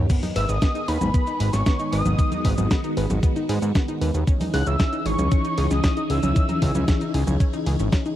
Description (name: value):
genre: italo disco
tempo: 115 BPM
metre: 4/4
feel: straight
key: unclear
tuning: A4 = 440 Hz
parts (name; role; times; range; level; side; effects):
- phased string machine; sustained chords; 0.0-8.2 s; D#3 to G#4; -28 LUFS; equal; ensemble chorus, phaser
- fat analog bass; bass; 0.0-7.9 s; G#1 to G#2; -23 LUFS; equal; none
- wide unison pluck; arpeggios; 0.1-8.1 s; B3 to B4; -30 LUFS; left 4 dB; tape echo
- clean 12-bit digital drum machine; drums; 0.1-8.2 s; cabasa, congas, crash cymbal, hi-hat, snare drum; -27 LUFS; equal; none
- electronic kick drum; drums; 0.1-8.0 s; none; -20 LUFS; equal; none
- wide unison lead; melody; 0.4-7.1 s; B5 to F#6; -28 LUFS; equal; tape echo
room: little or no reverb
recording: dry, close 1970s-style studio recording, vinyl crackle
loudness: -19 LUFS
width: side -12 dB against mid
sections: 0.1-8.2 A section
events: none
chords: 0.1 G#m; 4.3 C#madd9